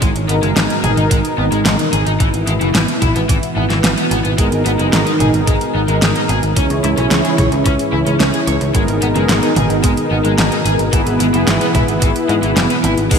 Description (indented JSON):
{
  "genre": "synthwave",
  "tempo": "110 BPM",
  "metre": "4/4",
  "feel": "straight",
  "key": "G# minor",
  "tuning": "A4 = 440 Hz",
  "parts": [
    { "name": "warm analog pad", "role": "sustained chords", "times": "0.0-13.2 s", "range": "G#2 to A#4", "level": "-18 LUFS", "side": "equal", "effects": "chorus, sidechain pumping" },
    { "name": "raw garage guitar", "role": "riff", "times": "0.0-13.2 s", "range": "E3 to C#5", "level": "-21 LUFS", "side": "left 1 dB", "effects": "overdrive, wide subtle chorus, ping-pong delay" },
    { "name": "picked electric bass", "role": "bass", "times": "0.0-13.2 s", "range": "F#1 to G#2", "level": "-18 LUFS", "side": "equal", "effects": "none" },
    { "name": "electronic kick drum", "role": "drums", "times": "0.0-13.2 s", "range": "none", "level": "-16 LUFS", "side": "equal", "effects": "none" },
    { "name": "pop drum kit", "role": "drums", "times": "0.0-13.2 s", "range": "cabasa, crash cymbal, hi-hat, snare drum, toms", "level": "-19 LUFS", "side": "equal", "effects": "gated reverb" },
    { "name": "mellow synth brass", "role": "stabs", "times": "4.4-13.2 s", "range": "B3 to C#5", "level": "-20 LUFS", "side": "right 1 dB", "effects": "chorus, ping-pong delay" }
  ],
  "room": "moderate lush hall reverb, RT60 2.3 s",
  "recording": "bright 1980s-style digital production",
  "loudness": "-12 LUFS",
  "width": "side -6 dB against mid",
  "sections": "0.0-13.1 A section",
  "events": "none",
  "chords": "0.0 G#madd9; 2.2 E; 4.4 G#madd9; 6.6 C#m; 8.7 G#madd9; 10.9 E",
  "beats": "| 0.02 0.57 1.11 1.66 | 2.20 2.75 3.29 3.84 | 4.38 4.93 5.47 6.02 | 6.57 7.11 7.66 8.20 | 8.75 9.29 9.84 10.38 | 10.93 11.47 12.02 12.57 | 13.11"
}